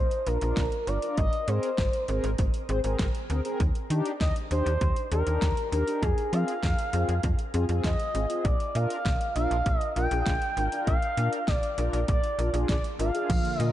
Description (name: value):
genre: synth-pop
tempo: 99 BPM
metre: 4/4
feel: straight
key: unclear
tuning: A4 = 440 Hz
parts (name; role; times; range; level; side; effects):
- expressive synth lead; melody; 0.0-13.7 s; Ab4 to G5; -30 LUFS; equal; chorus, shimmer reverb
- slap-like FM bass; bass; 0.0-13.7 s; G1 to F3; -28 LUFS; equal; none
- pop drum kit; drums; 0.1-13.7 s; crash cymbal, hi-hat, kick drum, snare drum; -29 LUFS; equal; none
- mellow synth brass; accompaniment; 0.3-13.7 s; C4 to C5; -33 LUFS; left 1 dB; chorus, shimmer reverb
- brassy analog pad; sustained chords; 13.3-13.7 s; D3 to F4; -34 LUFS; equal; chorus
- warbly dusty pluck; arpeggios; 13.3-13.7 s; F3 to Bb3; -33 LUFS; right 4 dB; chorus
room: light reverb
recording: dark, warm production, nothing above 10.9 kHz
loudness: -24 LUFS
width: side -13 dB against mid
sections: 0.0-13.3 A section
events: none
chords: 0.0 Bb; 1.2 Abadd9; 3.6 Ebmaj7; 6.0 Fm; 8.4 Bb